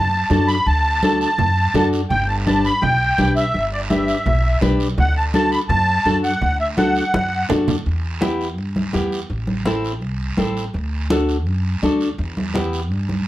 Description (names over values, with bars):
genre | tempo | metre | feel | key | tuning
latin, cumbia | 167 BPM | 4/4 | straight | unclear | A4 = 441 Hz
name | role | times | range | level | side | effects
musette accordion | melody | 0.0-7.5 s | D5 to B5 | -19 LUFS | equal | none
upright bass | bass | 0.0-13.2 s | G1 to G2 | -22 LUFS | equal | none
nylon-string guitar | accompaniment | 0.3-12.8 s | B3 to B4 | -20 LUFS | left 2 dB | none
congas | percussion | 0.3-13.3 s | none | -24 LUFS | right 1 dB | none
guiro | percussion | 0.3-13.3 s | none | -33 LUFS | right 4 dB | none
room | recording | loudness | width
moderate studio reverb, RT60 0.5 s | none | -16 LUFS | side -15 dB against mid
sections
0.0-7.9 A section; 7.9-13.3 B section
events
drum fill 7.1-7.9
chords
0.0 D; 2.1 G; 5.0 D; 7.9 Em; 9.3 Am; 10.7 D; 12.2 Em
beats
0.31 | 0.67 1.03 1.39 1.75 | 2.11 2.47 2.83 3.19 | 3.54 3.90 4.26 4.62 | 4.98 5.34 5.70 6.06 | 6.42 6.78 7.14 7.50 | 7.86 8.22 8.58 8.94 | 9.30 9.66 10.02 10.38 | 10.74 11.11 11.47 11.83 | 12.19 12.55 12.91 13.27